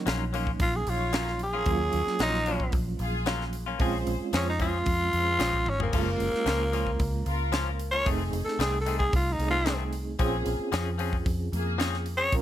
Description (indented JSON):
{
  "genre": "straight-eighth soul blues",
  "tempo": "113 BPM",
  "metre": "4/4",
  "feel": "straight",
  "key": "Bb minor",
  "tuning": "A4 = 438 Hz",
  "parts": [
    { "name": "growling tenor saxophone", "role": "melody", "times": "0.0-12.3 s", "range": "Bb3 to Db5", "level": "-28 LUFS", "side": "equal", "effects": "none" },
    { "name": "overdriven reed electric piano", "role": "accompaniment", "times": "0.0-12.4 s", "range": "Gb3 to Bb4", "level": "-34 LUFS", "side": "right 5 dB", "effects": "fast tremolo" },
    { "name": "muted studio string section", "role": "sustained chords", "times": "0.0-12.4 s", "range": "Gb3 to Db5", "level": "-39 LUFS", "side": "left 2 dB", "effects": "none" },
    { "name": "direct-recorded clean electric guitar", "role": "stabs", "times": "0.1-12.4 s", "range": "Eb3 to Ab4", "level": "-33 LUFS", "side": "left 8 dB", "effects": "slapback echo" },
    { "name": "vintage muted fingered electric bass", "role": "bass", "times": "0.1-12.4 s", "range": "F1 to F2", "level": "-30 LUFS", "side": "equal", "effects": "none" },
    { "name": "tight funk drum kit", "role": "drums", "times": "0.1-12.4 s", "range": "crash cymbal, hi-hat, kick drum, snare drum, toms", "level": "-31 LUFS", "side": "equal", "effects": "none" }
  ],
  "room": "little or no reverb",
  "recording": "none",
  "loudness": "-25 LUFS",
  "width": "side -12 dB against mid",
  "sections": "0.0-12.4 A section",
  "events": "tenor saxophone solo 0.0-12.4; drum fill 5.7",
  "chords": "0.0 Ebm9; 3.8 Bbm9; 5.9 Gbmaj7; 8.1 F7#9; 10.2 Bbm9"
}